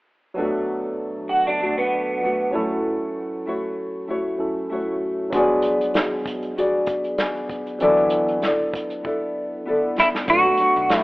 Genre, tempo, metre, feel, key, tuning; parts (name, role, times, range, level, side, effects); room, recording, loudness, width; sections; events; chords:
indie pop, bedroom pop; 97 BPM; 4/4; swing 55% on 16ths; A4 = 443 Hz
barky tine electric piano; accompaniment; 0.3-11.0 s; F#3 to A4; -27 LUFS; right 1 dB; cassette tape
nylon-string guitar; accompaniment; 0.3-11.0 s; B2 to D5; -23 LUFS; left 1 dB; lush chorus, warbly pitch drift
electric guitar through a small old amp; second line; 1.3-2.5 s; B3 to F#4; -22 LUFS; right 2 dB; ensemble chorus, analog delay
unplugged drum kit; drums; 5.3-11.0 s; hi-hat, kick drum, snare drum; -26 LUFS; equal
clean electric guitar; melody; 10.0-11.0 s; E4 to F#4; -16 LUFS; equal; analog chorus
vintage muted picked electric bass; bass; 10.3-11.0 s; B1; -39 LUFS; equal
light reverb, small room ambience; rough home demo mix, telephone sound; -20 LUFS; side -20 dB against mid
0.4-10.3 A section
drum fill 9.0-10.3
0.4 Bm7; 2.5 F#m7; 5.3 G#m7b5; 7.8 E9sus4; 10.3 Bm7